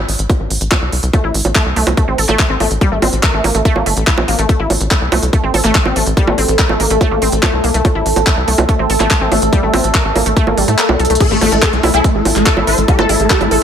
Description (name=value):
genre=psychedelic trance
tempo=143 BPM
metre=4/4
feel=straight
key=A phrygian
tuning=A4 = 440 Hz
part: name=tight sequencer bass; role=bass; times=0.0-13.6 s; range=G1 to A2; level=-17 LUFS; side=equal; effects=none
part: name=garage drum kit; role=drums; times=0.1-13.6 s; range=bongos, crash cymbal, handclaps, hi-hat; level=-16 LUFS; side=right 2 dB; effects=none
part: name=electronic kick drum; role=drums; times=0.3-13.4 s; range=none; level=-16 LUFS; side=equal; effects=none
part: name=wide unison pluck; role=riff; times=1.1-13.6 s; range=G3 to Bb4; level=-18 LUFS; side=moving between left 5 dB and right 4 dB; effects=auto-pan, sidechain pumping, ping-pong delay
part: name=overtone-sweeping drone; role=sustained chords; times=5.3-13.6 s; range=A3 to A4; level=-19 LUFS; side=equal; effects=chorus, built-in reverb, sidechain pumping
part: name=swell and sub drop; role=sound effects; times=10.6-12.9 s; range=none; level=-26 LUFS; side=left 4 dB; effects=none
part: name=swarming rave lead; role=melody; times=11.2-13.6 s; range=A3 to C5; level=-17 LUFS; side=left 1 dB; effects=chorus, phaser, sidechain pumping, ping-pong delay
part: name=airy breathy pad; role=texture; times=11.2-13.6 s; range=E4 to A5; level=-22 LUFS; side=equal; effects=chorus, sidechain pumping
room=light reverb, digital ambience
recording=none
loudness=-11 LUFS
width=side -8 dB against mid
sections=0.0-11.2 A section; 11.2-13.6 B section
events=swell 10.6-11.2; kick drops out 10.8-11.2; drum fill 11.0; drop 11.2-13.6; impact 11.2-12.9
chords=0.0 A5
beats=0.29 0.71 | 1.14 1.55 1.97 2.39 | 2.81 3.23 3.65 4.07 | 4.49 4.91 5.33 5.75 | 6.17 6.59 7.01 7.43 | 7.85 8.27 8.69 9.11 | 9.53 9.95 10.37 10.79 | 11.21 11.62 12.04 12.46 | 12.88 13.30